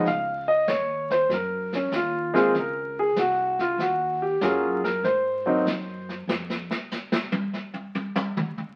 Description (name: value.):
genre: jazz piano trio.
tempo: 96 BPM.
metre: 4/4.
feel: swing 68% on 8ths.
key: unclear.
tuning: A4 = 440 Hz.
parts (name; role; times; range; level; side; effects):
warm concert grand piano; melody; 0.0-6.1 s; Gb3 to F5; -25 LUFS; equal; none.
upright bass; bass; 0.0-6.7 s; C2 to Ab2; -39 LUFS; equal; none.
jazz brush drum kit; drums; 0.1-8.7 s; brushed snare drum, hi-hat, kick drum, snare drum, toms; -32 LUFS; equal; none.
room: moderate studio reverb, RT60 0.8 s.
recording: very old 78 rpm record, vinyl crackle.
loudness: -25 LUFS.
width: mono.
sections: 0.0-8.8 A section.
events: grand piano solo 0.0-8.8; drum solo 6.3-8.8.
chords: 0.1 Dbsus2; 1.3 Gbmaj9#11; 3.8 Ebm7; 5.0 Ab7; 6.3 N.C..